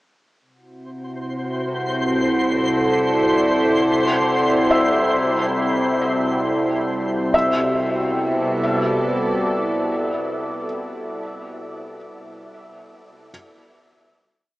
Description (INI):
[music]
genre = ambient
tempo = free time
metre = none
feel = none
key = C lydian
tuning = A4 = 439 Hz
[part]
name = evolving wavetable pad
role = sustained chords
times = 0.9-11.3 s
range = C3 to D5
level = -20 LUFS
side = equal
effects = chorus, built-in reverb, shimmer reverb
[part]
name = overtone-sweeping drone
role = drone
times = 2.0-10.7 s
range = C3 to G3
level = -29 LUFS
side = equal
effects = chorus, built-in reverb
[part]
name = twinkling granular texture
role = texture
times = 1.2-7.3 s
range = C5 to C6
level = -26 LUFS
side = equal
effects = built-in reverb, shimmer reverb
[part]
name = felt-muted upright piano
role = arpeggios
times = 4.7-13.3 s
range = E5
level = -24 LUFS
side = equal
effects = tape echo, shimmer reverb
[sound]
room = wet huge ambient reverb, RT60 9.0 s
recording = in a vast, echoing space, small speaker sound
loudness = -17 LUFS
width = side -18 dB against mid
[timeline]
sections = 0.4-7.3 A section; 7.3-10.8 final chord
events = fade-in on synth drone 0.4-7.3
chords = 0.4 Cadd9; 7.3 Cmaj9